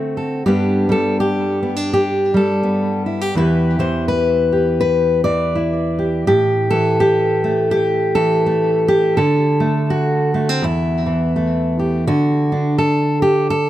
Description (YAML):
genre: folk, solo fingerstyle acoustic guitar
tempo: 83 BPM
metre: 4/4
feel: swing 60% on 8ths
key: E minor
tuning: A4 = 440 Hz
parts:
  - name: fingerpicked steel-string acoustic guitar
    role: solo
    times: 0.0-13.7 s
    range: E2 to D5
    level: -14 LUFS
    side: equal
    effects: tape echo
room: light reverb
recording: close, detailed microphones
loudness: -14 LUFS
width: side -13 dB against mid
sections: 0.0-12.1 A section; 12.1-13.7 B section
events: none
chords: 0.5 G; 3.4 Em; 6.3 A5; 9.2 D; 10.6 Em; 12.1 D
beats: | 0.46 1.19 1.92 2.64 | 3.37 4.10 4.82 5.55 | 6.28 7.00 7.73 8.46 | 9.18 9.91 10.64 11.36 | 12.09 12.82 13.54